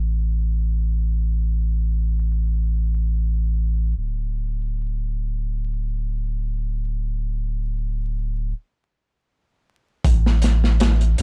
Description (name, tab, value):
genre	trip hop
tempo	free time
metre	none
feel	none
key	unclear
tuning	A4 = 440 Hz
part	warm sub bass	bass	0.0-11.2 s	D1 to C#2	-23 LUFS	equal	none
part	crunchy breakbeat drum kit	drums	10.0-11.2 s	hi-hat, kick drum, snare drum	-23 LUFS	equal	vintage 12-bit sampler grit
room	little or no reverb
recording	dark, warm production, vinyl crackle, low-pass filter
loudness	-23 LUFS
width	mono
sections	0.0-10.0 A section; 10.0-11.2 B section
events	filter sweep 0.0-10.0; stop 8.5-10.0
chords	none